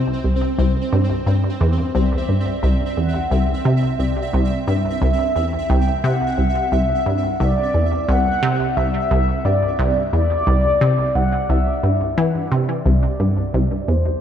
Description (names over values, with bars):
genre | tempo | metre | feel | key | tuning
ambient, sequencer-driven space music | 88 BPM | 4/4 | straight | C lydian | A4 = 440 Hz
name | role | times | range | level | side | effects
resonant blip pluck | riff | 0.0-14.1 s | C2 to E3 | -18 LUFS | equal | chorus, analog delay
pulsing gated texture | texture | 0.0-12.9 s | C4 to E5 | -27 LUFS | right 1 dB | chorus, built-in reverb
mellow horn-like synth lead | melody | 2.0-14.2 s | C5 to G5 | -22 LUFS | equal | analog chorus, analog delay
room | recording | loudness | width
moderate plate reverb, RT60 3.2 s | dark, warm production | -16 LUFS | side -9 dB against mid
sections
0.0-12.9 A section; 12.9-14.2 B section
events
none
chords
0.0 Cadd9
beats
0.58 1.27 | 1.95 2.63 3.31 3.99 | 4.67 5.36 6.04 6.72 | 7.40 8.08 8.77 9.45 | 10.13 10.81 11.49 12.18 | 12.86 13.54